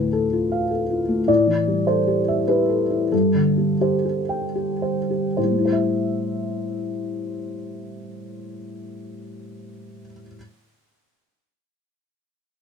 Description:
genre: classical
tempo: 71-106 BPM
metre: 3/4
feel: rubato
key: A minor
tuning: A4 = 440 Hz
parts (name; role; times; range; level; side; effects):
- felt-muted upright piano; accompaniment; 0.0-10.4 s; D2 to G5; -20 LUFS; left 1 dB; none
room: light reverb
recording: minimal, uncompressed stereo recording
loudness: -19 LUFS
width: side -6 dB against mid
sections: 0.0-5.4 A section; 5.4-10.3 B section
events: slowing down 0.4-5.4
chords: 0.0 Dm; 1.3 Am7; 3.1 Gsus4; 5.4 Am7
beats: 0.14 0.71 | 1.28 1.87 2.48 | 3.12 3.80 4.54 | 5.37 6.21 7.04 | 7.86 8.68 9.51

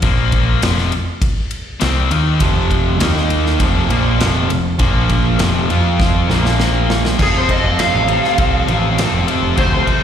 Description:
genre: classic rock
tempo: 101 BPM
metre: 4/4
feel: straight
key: F mixolydian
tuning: A4 = 437 Hz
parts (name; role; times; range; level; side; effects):
- distorted electric guitar; riff; 0.0-10.0 s; F2 to A4; -19 LUFS; left 12 dB; overdrive, slapback echo
- growling picked electric bass; bass; 0.0-9.8 s; F1 to F2; -17 LUFS; equal; overdrive
- big rock drum kit; drums; 0.0-10.0 s; crash cymbal, kick drum, ride cymbal, snare drum; -19 LUFS; equal; none
- crunchy overdriven guitar; riff; 2.4-10.0 s; F2 to F4; -20 LUFS; right 10 dB; spring reverb
- lead guitar through a small cranked amp; melody; 7.2-10.0 s; Ab4 to F5; -18 LUFS; equal; wah, overdrive, slapback echo, tape echo
room: small room ambience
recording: live gig heard through the venue's PA, recital hall reverb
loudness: -13 LUFS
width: side -9 dB against mid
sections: 0.0-7.2 A section; 7.2-10.0 B section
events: drum fill 6.0-7.2; lead electric guitar solo 7.2-10.0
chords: 0.0 Bb5; 0.6 F5; 3.0 Eb5; 3.6 F5; 4.8 Bb5; 5.4 F5; 6.3 Bb5; 7.2 F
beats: | 0.03 0.63 1.23 1.82 | 2.42 3.02 3.61 4.21 | 4.80 5.40 6.00 6.59 | 7.19 7.79 8.38 8.98 | 9.58

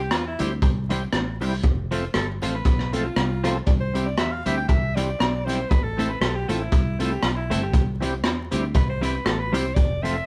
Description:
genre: ska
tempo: 118 BPM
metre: 4/4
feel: swing 55% on 8ths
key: C major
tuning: A4 = 440 Hz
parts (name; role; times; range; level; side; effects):
- edgy alto saxophone; melody; 0.0-10.3 s; E4 to G5; -32 LUFS; equal; none
- fingered electric bass; bass; 0.0-10.2 s; F1 to E2; -30 LUFS; equal; none
- crunchy breakbeat drum kit; drums; 0.1-10.2 s; hi-hat, kick drum, rim click; -25 LUFS; equal; none
- semi-hollow electric guitar; accompaniment; 0.4-10.1 s; F3 to A4; -32 LUFS; equal; tremolo
- overdriven tonewheel organ; stabs; 0.4-10.2 s; C4 to C5; -33 LUFS; equal; slow rotary speaker
- tambourine; percussion; 0.4-10.2 s; none; -54 LUFS; equal; none
room: moderate studio reverb, RT60 0.7 s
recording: band playing live in one room, vinyl crackle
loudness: -23 LUFS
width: mono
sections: 0.0-10.3 A section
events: alto saxophone solo 0.0-10.3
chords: 0.0 C; 1.6 F; 3.7 C; 5.7 Am; 7.7 C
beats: 0.11 0.62 1.13 | 1.64 2.15 2.66 3.17 | 3.68 4.18 4.69 5.20 | 5.71 6.22 6.72 7.23 | 7.74 8.24 8.75 9.26 | 9.76

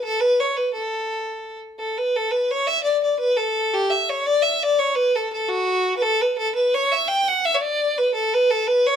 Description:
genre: celtic folk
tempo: 113 BPM (dotted quarters)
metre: 6/8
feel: straight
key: A mixolydian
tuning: A4 = 440 Hz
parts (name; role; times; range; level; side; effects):
- rich fiddle; solo; 0.0-9.0 s; F#4 to G5; -19 LUFS; equal; none
room: moderate studio reverb, RT60 0.9 s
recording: minimal, uncompressed stereo recording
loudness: -19 LUFS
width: side -8 dB against mid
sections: 0.0-1.8 A section; 1.8-9.0 A section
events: none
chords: none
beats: 0.19 | 0.72 1.25 | 1.78 2.31 | 2.84 3.37 | 3.90 4.43 | 4.96 5.48 | 6.01 6.54 | 7.07 7.60 | 8.13 8.66

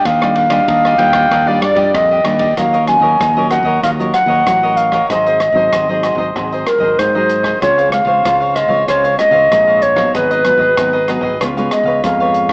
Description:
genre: samba and choro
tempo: 95 BPM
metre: 4/4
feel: straight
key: Eb minor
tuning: A4 = 443 Hz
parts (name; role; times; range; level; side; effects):
- baroque flute; melody; 0.0-12.5 s; Bb4 to Ab5; -12 LUFS; equal; analog delay
- cavaquinho; accompaniment; 0.0-12.5 s; D4 to F5; -20 LUFS; equal; none
- nylon-string guitar; accompaniment; 0.0-12.5 s; Ab2 to F4; -22 LUFS; equal; none
- modern bright fingered electric bass; bass; 0.1-12.5 s; Ab1 to Ab2; -22 LUFS; equal; none
- open jazz drum kit; drums; 0.1-12.5 s; hi-hat, kick drum, ride cymbal, rim click; -23 LUFS; equal; none
- warm clarinet; second line; 0.7-2.6 s; D5 to G5; -18 LUFS; equal; none
room: light reverb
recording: worn, warbling old tape, cassette tape, warbly pitch drift, small speaker sound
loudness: -10 LUFS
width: side -39 dB against mid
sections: 0.0-2.6 A section; 2.6-12.5 B section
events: none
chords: 0.0 Ebmaj9; 2.6 Ebm9; 5.1 Ab7; 7.6 Dbmaj7; 10.1 Abm7; 11.4 Db7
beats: | 0.05 0.68 1.31 1.94 | 2.57 3.20 3.83 4.47 | 5.10 5.73 6.36 6.99 | 7.62 8.25 8.88 9.52 | 10.15 10.78 11.41 12.04

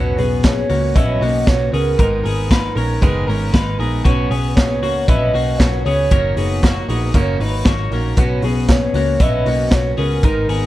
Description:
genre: jangly indie pop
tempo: 116 BPM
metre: 4/4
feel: straight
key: B major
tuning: A4 = 440 Hz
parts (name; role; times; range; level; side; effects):
- picked steel-string acoustic guitar; accompaniment; 0.0-10.7 s; F#2 to A#4; -23 LUFS; right 5 dB; none
- twelve-string electric guitar; arpeggios; 0.0-10.7 s; A#3 to C#5; -24 LUFS; left 7 dB; slapback echo
- vintage muted picked electric bass; bass; 0.0-10.7 s; F#1 to C#2; -20 LUFS; equal; none
- hollow clarinet-like synth lead; melody; 0.2-10.7 s; A#4 to D#5; -21 LUFS; equal; chorus, slapback echo
- raw garage drum kit; drums; 0.2-10.6 s; hi-hat, kick drum, snare drum; -18 LUFS; equal; none
room: little or no reverb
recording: none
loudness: -14 LUFS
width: side -15 dB against mid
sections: 0.0-10.7 A section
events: none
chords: 0.0 Bsus2; 2.0 G#madd9; 4.1 Bsus2; 6.1 F#6; 8.2 Bsus2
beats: 0.44 0.96 1.48 | 1.99 2.51 3.02 3.54 | 4.05 4.57 5.08 5.60 | 6.11 6.63 7.14 7.66 | 8.17 8.69 9.20 9.72 | 10.23

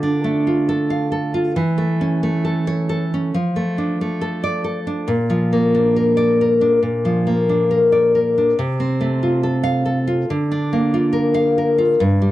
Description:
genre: romantic piece for solo classical guitar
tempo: 69 BPM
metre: 4/4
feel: rubato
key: unclear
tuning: A4 = 440 Hz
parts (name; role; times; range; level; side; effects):
- nylon-string guitar; solo; 0.0-12.3 s; G2 to F5; -16 LUFS; equal; none
room: little or no reverb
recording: dry, close 1970s-style studio recording, lossy compression artefacts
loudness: -16 LUFS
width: side -14 dB against mid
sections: 0.0-12.3 A section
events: none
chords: 0.0 Dm; 1.6 A/E; 3.4 Dm/F; 5.1 Bb; 8.6 F/C; 10.3 Bb/D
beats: 0.69 | 1.58 2.47 3.36 4.23 | 5.10 5.98 6.84 7.71 | 8.57 9.42 10.27 11.12 | 11.98

